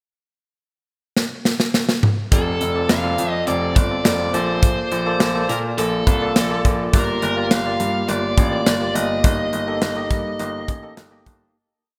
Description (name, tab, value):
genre	1980s-style pop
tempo	104 BPM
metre	4/4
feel	straight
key	F mixolydian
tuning	A4 = 439 Hz
part	modern studio drum kit	drums	1.2-11.4 s	hi-hat, kick drum, snare drum, toms	-21 LUFS	equal	none
part	bluesy overdriven lead guitar	melody	2.3-10.9 s	A4 to F5	-26 LUFS	equal	distortion
part	barky tine electric piano	accompaniment	2.3-11.6 s	Bb3 to A5	-26 LUFS	equal	none
part	clear baby grand piano	bass	2.3-11.5 s	F1 to Bb2	-28 LUFS	equal	none
room	moderate lush hall reverb, RT60 1.9 s, small room ambience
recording	bright 1980s-style digital production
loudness	-20 LUFS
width	mono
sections	0.0-2.3 pickup bar; 2.3-11.6 verse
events	drum fill 1.2-2.3; fade-out 9.2-11.6; tine electric piano fill 10.7-11.6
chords	0.0 N.C.; 2.3 F6; 4.3 Bbmaj7; 6.9 Gm7; 9.2 Eb/G